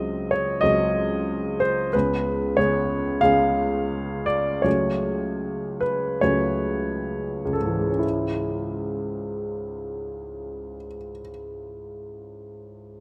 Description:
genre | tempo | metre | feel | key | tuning
classical, romantic character piece for solo piano | 61-96 BPM | 4/4 | rubato | C# minor | A4 = 440 Hz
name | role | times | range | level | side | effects
clear grand piano | solo | 0.0-13.0 s | C#2 to E#5 | -25 LUFS | equal | none
room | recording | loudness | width
light reverb | close, detailed microphones | -24 LUFS | mono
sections
0.0-8.0 A section; 8.0-11.6 B section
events
slowing down 0.6-8.0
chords
0.0 G#7/C#; 1.9 C#7; 4.7 F#m/C#; 8.0 C#m

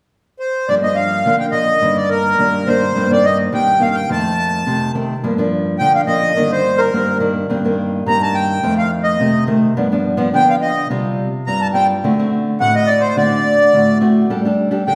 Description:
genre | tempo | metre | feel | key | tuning
samba | 106 BPM | 4/4 | straight | G minor | A4 = 438 Hz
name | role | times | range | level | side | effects
accordion | melody | 0.4-14.9 s | Bb4 to Bb5 | -18 LUFS | equal | none
nylon-string guitar | accompaniment | 0.7-14.9 s | F2 to A4 | -19 LUFS | equal | none
room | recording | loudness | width
wet recital hall reverb, RT60 1.6 s | recorded in a church or concert hall | -16 LUFS | mono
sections
0.7-5.2 A section; 5.2-14.9 B section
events
none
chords
0.0 N.C.; 0.7 Gm7; 1.8 Ebmaj7/G; 3.0 Cm7/G; 4.1 F7; 5.2 Gm7; 6.4 Ebmaj7/G; 7.5 Cm7/G; 8.6 F7; 9.8 G7; 10.9 Csus4; 12.0 D7; 14.3 Gsus2

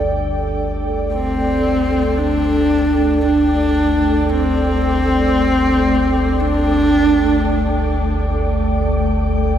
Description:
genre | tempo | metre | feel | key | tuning
dark ambient drone | free time | none | none | unclear | A4 = 440 Hz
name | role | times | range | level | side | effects
dark analog pad | sustained chords | 0.0-9.6 s | A4 to G5 | -23 LUFS | right 1 dB | chorus, shimmer reverb
deep rumbling drone | drone | 0.0-9.6 s | G1 to D2 | -20 LUFS | equal | built-in reverb, wide subtle chorus
wind-like tuned noise texture | texture | 0.0-9.6 s | A3 to D5 | -24 LUFS | left 2 dB | built-in reverb, shimmer reverb
clear horsehead fiddle | melody | 1.1-8.0 s | C4 to D4 | -16 LUFS | equal | shimmer reverb, tape echo
room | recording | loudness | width
wet plate reverb, RT60 3.6 s | echo-heavy mix | -14 LUFS | side -10 dB against mid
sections
0.1-9.6 A section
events
none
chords
0.1 Gsus2

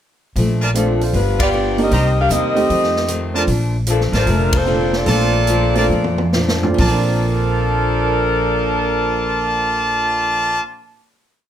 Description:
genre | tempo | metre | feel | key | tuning
jazz, big band swing | 130-154 BPM | 4/4 | swing 66% on 8ths | Bb major | A4 = 435 Hz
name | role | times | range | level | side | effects
picked steel-string acoustic guitar | accompaniment | 0.4-10.7 s | F2 to Eb4 | -25 LUFS | left 3 dB | none
upright bass | bass | 0.4-10.6 s | F1 to F2 | -20 LUFS | equal | none
swinging big-band drum kit | drums | 0.4-6.9 s | hi-hat, kick drum, ride cymbal, snare drum, toms | -23 LUFS | equal | none
brilliant trumpet section | stabs | 0.6-10.6 s | F4 to Bb5 | -21 LUFS | equal | none
warm upright piano | accompaniment | 0.7-10.7 s | Bb2 to A4 | -23 LUFS | right 3 dB | none
mellow saxophone section | melody | 0.8-10.6 s | F3 to F5 | -19 LUFS | equal | none
room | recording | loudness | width
moderate club reverb, RT60 0.8 s | none | -14 LUFS | side -10 dB against mid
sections
0.4-6.8 A section; 6.8-10.5 final chord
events
band accent 1.3, 4.5; slowing down 3.5-6.8; drum fill 5.9-6.8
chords
0.4 Bbmaj7; 1.1 G7; 1.9 Cm7; 2.7 F7; 3.5 Bbmaj7

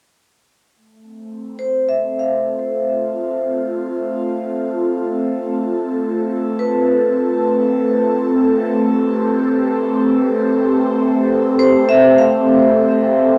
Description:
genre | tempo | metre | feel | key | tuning
ambient | free time | none | none | F lydian | A4 = 440 Hz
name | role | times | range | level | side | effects
airy breathy pad | sustained chords | 0.8-13.4 s | A3 to A4 | -19 LUFS | equal | chorus, phaser, cassette tape
vibraphone with medium hard mallets | arpeggios | 1.6-13.4 s | B4 to F5 | -20 LUFS | equal | cassette tape, analog delay
room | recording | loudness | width
wet studio ambience, RT60 0.5 s | home recording on cassette | -17 LUFS | mono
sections
0.6-13.4 A section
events
fade-in on analog synth pad 0.6-13.4; fade-in on vibraphone 0.6-13.4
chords
0.6 Fmaj7

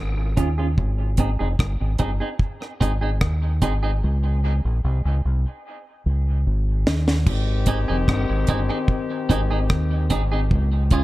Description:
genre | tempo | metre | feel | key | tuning
dub reggae | 74 BPM | 4/4 | straight | Ab major | A4 = 436 Hz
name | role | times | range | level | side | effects
deep dub fingered electric bass | bass | 0.0-11.0 s | F1 to Eb2 | -21 LUFS | equal | none
clean electric guitar | accompaniment | 0.4-11.0 s | C4 to Ab4 | -28 LUFS | right 3 dB | low-pass filter, dub echo
deep reggae drum kit | drums | 0.4-11.0 s | crash cymbal, hi-hat, kick drum, rim click, snare drum | -22 LUFS | equal | none
clear horn section | second line | 7.3-10.1 s | Eb3 to G4 | -28 LUFS | left 4 dB | dub echo
room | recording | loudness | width
small room ambience | echo-heavy mix | -19 LUFS | side -17 dB against mid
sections
0.0-7.3 A section; 7.3-11.0 B section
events
filter sweep on clean electric guitar 0.0-7.3; drums muted 4.0-7.3; drum fill 5.6-7.3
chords
0.0 Db; 0.8 Ab; 4.0 Db5; 7.3 Ab; 10.5 Db

